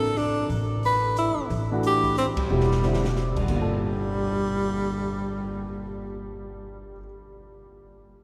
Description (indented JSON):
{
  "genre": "modal jazz",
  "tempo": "181 BPM",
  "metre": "3/4",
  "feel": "swing 62% on 8ths",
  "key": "G dorian",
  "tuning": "A4 = 441 Hz",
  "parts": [
    { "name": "warm tenor saxophone", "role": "melody", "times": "0.0-6.2 s", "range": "G3 to B4", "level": "-29 LUFS", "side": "equal", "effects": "none" },
    { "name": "upright bass", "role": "bass", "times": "0.0-6.9 s", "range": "E1 to A1", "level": "-31 LUFS", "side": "equal", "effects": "none" },
    { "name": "open jazz drum kit", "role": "drums", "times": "0.0-5.4 s", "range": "crash cymbal, cymbal swell, hi-hat, kick drum, ride cymbal, snare drum", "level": "-38 LUFS", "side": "equal", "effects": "none" },
    { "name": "warm baby grand piano", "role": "accompaniment", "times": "1.7-7.0 s", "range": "G2 to A4", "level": "-33 LUFS", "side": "equal", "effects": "none" }
  ],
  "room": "wet cathedral reverb, RT60 7.6 s",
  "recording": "recorded in a church or concert hall",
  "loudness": "-25 LUFS",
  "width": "mono",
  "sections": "0.0-3.5 A section; 3.5-5.5 B section",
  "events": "band accent 2.3; drum fill 2.5-3.2",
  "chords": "0.0 A7(no3); 3.5 Gm9",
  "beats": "0.17 | 0.50 0.83 1.16 | 1.50 1.83 2.16 | 2.49 2.82 3.15 | 3.48 3.81 4.14 | 4.47 4.80 5.13"
}